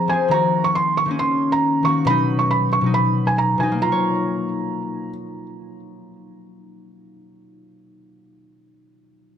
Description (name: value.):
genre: hip hop.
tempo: 137 BPM.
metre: 4/4.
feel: half-time.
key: Bb minor.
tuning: A4 = 440 Hz.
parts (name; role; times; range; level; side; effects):
felt-muted upright piano; melody; 0.0-5.1 s; Ab5 to Db6; -20 LUFS; right 4 dB; none.
concert harp; accompaniment; 0.0-8.6 s; B2 to Db5; -21 LUFS; left 3 dB; none.
room: light reverb, studio reverb.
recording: none.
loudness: -17 LUFS.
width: side -8 dB against mid.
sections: 0.0-3.8 A section; 3.8-7.3 B section.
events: none.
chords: 0.3 Ebm; 2.1 B; 3.8 Bbm.